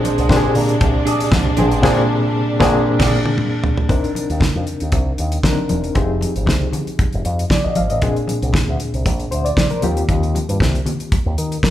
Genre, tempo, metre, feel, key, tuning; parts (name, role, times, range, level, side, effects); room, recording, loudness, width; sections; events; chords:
disco; 116 BPM; 4/4; straight; A4 = 440 Hz
clean electric guitar; accompaniment; 0.0-3.2 s; D4 to D5; -24 LUFS; right 6 dB
overdriven reed electric piano; accompaniment; 0.0-11.7 s; Bb2 to F5; -20 LUFS; left 1 dB; fast tremolo
clear studio string section; sustained chords; 0.0-3.9 s; C3 to D4; -24 LUFS; right 2 dB
picked electric bass with an envelope filter; bass; 0.0-11.6 s; E1 to Eb3; -21 LUFS; equal
damped 70s drum kit; drums; 0.0-11.7 s; crash cymbal, hi-hat, kick drum, snare drum, toms; -19 LUFS; equal
congas; percussion; 0.0-11.7 s; -26 LUFS; left 1 dB
moderate large studio reverb, RT60 1.2 s; band playing live in one room; -15 LUFS; side -12 dB against mid
0.0-3.9 A section; 3.9-11.7 B section
band accent 1.8-3.9; drum fill 2.9-3.9
0.0 Bb9; 3.9 Cm7; 6.0 Fm7; 8.0 Bb7; 9.8 Eb6